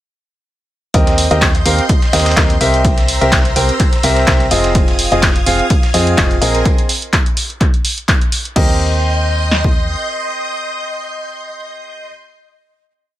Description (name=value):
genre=piano house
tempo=126 BPM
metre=4/4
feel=swing 55% on 16ths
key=Eb major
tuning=A4 = 440 Hz
part: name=string machine, violins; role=sustained chords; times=0.9-12.1 s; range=Bb4 to Ab6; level=-22 LUFS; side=equal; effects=ensemble chorus, vintage 12-bit sampler grit, sidechain pumping
part: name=clear upright piano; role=riff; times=0.9-12.1 s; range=C4 to G5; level=-17 LUFS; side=equal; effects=sidechain pumping, digital delay
part: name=solid FM bass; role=bass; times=0.9-9.9 s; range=F1 to F2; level=-17 LUFS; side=equal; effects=sidechain pumping
part: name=dusty soul sampler-style drum kit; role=drums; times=0.9-6.6 s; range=hi-hat, snare drum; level=-25 LUFS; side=left 1 dB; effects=sidechain pumping on hats, high-pass filter on hats, high-pass filter on snare
part: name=punchy analog drum machine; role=drums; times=0.9-9.7 s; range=kick drum, snare drum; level=-14 LUFS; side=equal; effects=none
part: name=punchy analog drum machine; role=drums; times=0.9-8.7 s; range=crash cymbal, handclaps, hi-hat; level=-18 LUFS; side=equal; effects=none
room=little or no reverb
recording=none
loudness=-11 LUFS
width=side -14 dB against mid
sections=0.9-8.6 drop; 8.6-12.4 final chord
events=drop 0.9-8.6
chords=0.9 Eb6; 2.8 C7; 4.8 Fm7; 6.4 Bb9sus4; 8.6 Eb6